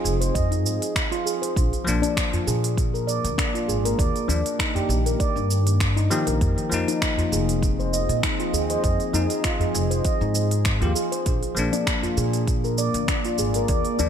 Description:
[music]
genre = organic downtempo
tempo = 99 BPM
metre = 4/4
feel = swing 54% on 16ths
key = F dorian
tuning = A4 = 439 Hz
[part]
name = warbly tape-like pad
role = sustained chords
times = 0.0-14.1 s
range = Bb2 to Eb5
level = -30 LUFS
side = equal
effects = chorus, built-in reverb, sidechain pumping
[part]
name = handpan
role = arpeggios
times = 0.0-14.1 s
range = D4 to Eb5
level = -27 LUFS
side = right 1 dB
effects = tape echo
[part]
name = upright bass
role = bass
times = 0.0-14.1 s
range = F1 to Bb2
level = -24 LUFS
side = equal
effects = none
[part]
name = organic electronic drum kit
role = drums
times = 0.1-14.1 s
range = cabasa, finger snaps, hi-hat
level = -28 LUFS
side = right 2 dB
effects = overdrive
[part]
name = electronic kick drum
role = drums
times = 0.4-13.8 s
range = none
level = -25 LUFS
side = equal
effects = none
[part]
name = bell-like tine electric piano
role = accompaniment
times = 1.8-14.1 s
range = Eb3 to G4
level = -29 LUFS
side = left 4 dB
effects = sidechain pumping, tape echo
[part]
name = udu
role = percussion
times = 2.3-12.1 s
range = none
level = -28 LUFS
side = left 1 dB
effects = none
[sound]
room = light reverb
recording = none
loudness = -20 LUFS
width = side -8 dB against mid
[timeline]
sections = 0.0-14.1 A section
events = none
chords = 0.0 Fm7; 1.6 Bb7; 4.0 Ebmaj7; 6.4 Fm7; 11.3 Bb7

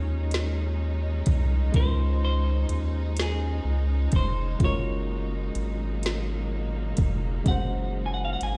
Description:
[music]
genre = slow six-eight R&B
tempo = 42 BPM (dotted quarters)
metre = 6/8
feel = straight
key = Db major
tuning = A4 = 437 Hz
[part]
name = semi-hollow electric guitar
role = melody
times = 0.0-8.6 s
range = Ab4 to Ab5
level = -36 LUFS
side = equal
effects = digital delay
[part]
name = tine electric piano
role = accompaniment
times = 0.0-8.6 s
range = Ab3 to Db5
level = -37 LUFS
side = equal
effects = none
[part]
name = warm studio string section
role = sustained chords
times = 0.0-8.6 s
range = Bb2 to Eb4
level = -39 LUFS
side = equal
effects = none
[part]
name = round analog bass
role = bass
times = 0.0-8.6 s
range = F1 to Eb2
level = -29 LUFS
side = equal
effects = none
[part]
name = smooth R&B drum kit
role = drums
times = 0.3-8.6 s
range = hi-hat, kick drum, snare drum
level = -26 LUFS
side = equal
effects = vintage 12-bit sampler grit
[sound]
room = little or no reverb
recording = played on a big sound system in a bare room, stone room reverb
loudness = -26 LUFS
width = mono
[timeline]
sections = 0.0-8.6 A section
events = none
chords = 0.0 Dbmaj9; 4.6 Gbmaj9

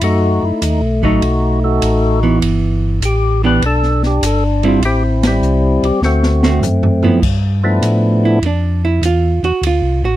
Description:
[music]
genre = soul jazz organ trio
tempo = 100 BPM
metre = 4/4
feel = swing 68% on 8ths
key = unclear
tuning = A4 = 440 Hz
[part]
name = percussive tonewheel organ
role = melody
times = 0.0-8.4 s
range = F3 to B4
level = -16 LUFS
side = left 1 dB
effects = slow rotary speaker, overdrive
[part]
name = mellow tonewheel organ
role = bass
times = 0.0-10.2 s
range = G1 to A2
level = -15 LUFS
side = equal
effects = slow rotary speaker
[part]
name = open jazz drum kit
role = drums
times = 0.0-9.8 s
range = crash cymbal, hi-hat, kick drum, ride cymbal, snare drum, toms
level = -22 LUFS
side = equal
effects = none
[part]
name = archtop guitar, miked and amplified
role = accompaniment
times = 1.0-10.2 s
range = D3 to G4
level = -16 LUFS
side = right 4 dB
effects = none
[sound]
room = little or no reverb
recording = dry, close 1970s-style studio recording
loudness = -12 LUFS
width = side -14 dB against mid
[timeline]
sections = 0.0-7.2 A section; 7.2-10.2 B section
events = band accent 5.1; drum fill 6.0-7.2; hollow-body jazz guitar solo 7.2-10.2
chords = 0.0 B7; 2.4 Em7; 4.8 Am7; 6.0 D7; 7.2 G13; 9.6 D5

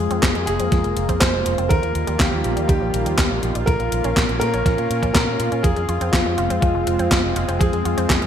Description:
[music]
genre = italo disco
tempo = 122 BPM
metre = 4/4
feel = straight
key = F minor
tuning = A4 = 439 Hz
[part]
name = clear concert grand piano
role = melody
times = 0.0-8.3 s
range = F4 to C5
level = -24 LUFS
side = equal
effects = digital delay
[part]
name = lush unison pad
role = sustained chords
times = 0.0-8.3 s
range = Eb3 to F4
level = -25 LUFS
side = left 1 dB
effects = chorus
[part]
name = fingered electric bass with an envelope filter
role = bass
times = 0.0-8.3 s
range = F1 to Bb2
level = -24 LUFS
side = equal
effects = none
[part]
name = analog pluck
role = arpeggios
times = 0.1-8.3 s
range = Eb3 to F4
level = -30 LUFS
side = right 3 dB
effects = chorus, ping-pong delay
[part]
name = clean 12-bit digital drum machine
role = drums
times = 0.1-8.3 s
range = handclaps, hi-hat, snare drum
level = -23 LUFS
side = equal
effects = overdrive, studio reverb, gated reverb
[part]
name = electronic kick drum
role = drums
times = 0.2-8.2 s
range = none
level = -20 LUFS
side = equal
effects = overdrive, studio reverb
[sound]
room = moderate plate reverb, RT60 2.0 s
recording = bright 1980s-style digital production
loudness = -17 LUFS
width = side -9 dB against mid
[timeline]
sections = 0.0-8.3 A section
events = none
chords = 0.0 Fm; 1.7 Ebadd9; 3.7 Bbm; 5.6 Fm

